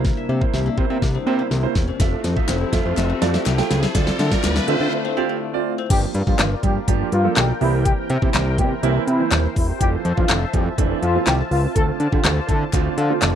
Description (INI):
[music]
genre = dance-pop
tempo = 123 BPM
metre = 4/4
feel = straight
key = G dorian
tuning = A4 = 440 Hz
[part]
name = warm grand piano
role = accompaniment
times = 0.0-13.3 s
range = D3 to G5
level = -25 LUFS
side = right 14 dB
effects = sidechain pumping
[part]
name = sweeping resonant pad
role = sustained chords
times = 0.0-13.4 s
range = C3 to A5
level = -29 LUFS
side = left 4 dB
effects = wide subtle chorus, sidechain pumping
[part]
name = qanun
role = arpeggios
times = 0.0-7.4 s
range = A3 to F5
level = -30 LUFS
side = left 10 dB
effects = sidechain pumping, slapback echo
[part]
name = fat analog bass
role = bass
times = 0.0-13.4 s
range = Eb1 to D3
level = -21 LUFS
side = left 1 dB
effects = sidechain pumping
[part]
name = pop drum kit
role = drums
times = 0.0-13.3 s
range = crash cymbal, handclaps, hi-hat, kick drum, snare drum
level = -21 LUFS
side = left 1 dB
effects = none
[part]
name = riser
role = sound effects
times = 0.7-4.9 s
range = none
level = -30 LUFS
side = left 1 dB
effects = none
[part]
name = group handclap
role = percussion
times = 2.5-13.3 s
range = none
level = -32 LUFS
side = left 11 dB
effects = none
[part]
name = warm horn section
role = melody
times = 5.9-13.1 s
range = E3 to A4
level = -24 LUFS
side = left 2 dB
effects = sidechain pumping, slapback echo
[sound]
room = small room ambience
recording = dry, close 1970s-style studio recording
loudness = -17 LUFS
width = side -9 dB against mid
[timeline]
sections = 0.0-5.9 A section; 5.9-13.4 B section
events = build-up 0.0-5.9; drum fill 0.0-4.9; riser 0.7-5.9; break 4.9-5.9; drop 5.9-13.4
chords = 0.0 C7; 2.0 Fmaj7; 4.0 Dm7; 5.9 Gm7; 7.6 C7; 9.8 Fmaj7; 11.8 Dm7